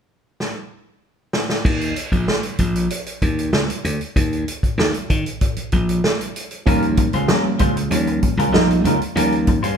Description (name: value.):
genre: funk.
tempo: 96 BPM.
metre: 4/4.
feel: straight.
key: Eb mixolydian.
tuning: A4 = 442 Hz.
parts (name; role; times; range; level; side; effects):
vintage drum kit; drums; 0.4-9.8 s; crash cymbal, hi-hat, kick drum, snare drum; -20 LUFS; equal; none.
slap bass; bass; 1.6-9.8 s; Bb1 to Eb3; -21 LUFS; equal; none.
clean electric guitar; accompaniment; 6.7-9.8 s; G3 to C5; -23 LUFS; left 1 dB; none.
reed electric piano; stabs; 6.7-9.6 s; F3 to Eb4; -21 LUFS; right 2 dB; overdrive, fast tremolo.
congas; percussion; 7.0-9.6 s; none; -25 LUFS; equal; none.
room: light reverb.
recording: band playing live in one room.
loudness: -17 LUFS.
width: side -7 dB against mid.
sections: 0.0-1.6 A section; 1.6-6.7 B section; 6.7-9.8 C section.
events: drum fill 0.4-1.6.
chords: 0.0 N.C.; 1.6 Eb5; 6.7 Eb9.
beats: 0.39 1.02 | 1.65 2.27 2.90 3.53 | 4.16 4.78 5.41 6.04 | 6.66 7.29 7.91 8.54 | 9.17.